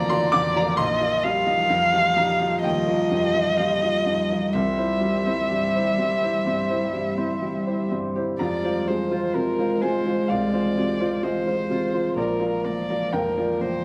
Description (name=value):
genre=neoclassical piano and strings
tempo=64 BPM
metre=4/4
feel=rubato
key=F dorian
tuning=A4 = 440 Hz
part: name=muted violin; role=melody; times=0.0-13.8 s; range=Bb4 to F5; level=-26 LUFS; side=equal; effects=none
part: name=muted cello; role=second line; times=0.0-13.8 s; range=F3 to Ab3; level=-33 LUFS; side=equal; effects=none
part: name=clear upright piano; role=accompaniment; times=0.0-13.8 s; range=Bb1 to D6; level=-29 LUFS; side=equal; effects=none
part: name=deep dark ambient pad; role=sustained chords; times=0.0-13.8 s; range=G3 to Eb5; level=-32 LUFS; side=equal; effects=chorus, built-in reverb, phaser
part: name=Celtic harp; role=arpeggios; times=0.0-13.8 s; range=C4 to Bb5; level=-33 LUFS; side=equal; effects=none
room=wet studio reverb, RT60 0.6 s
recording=band playing live in one room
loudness=-23 LUFS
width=mono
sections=0.0-13.8 A section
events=none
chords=0.0 Bb; 0.8 Ebadd9/Bb; 4.5 C; 8.4 Fm; 12.2 Bb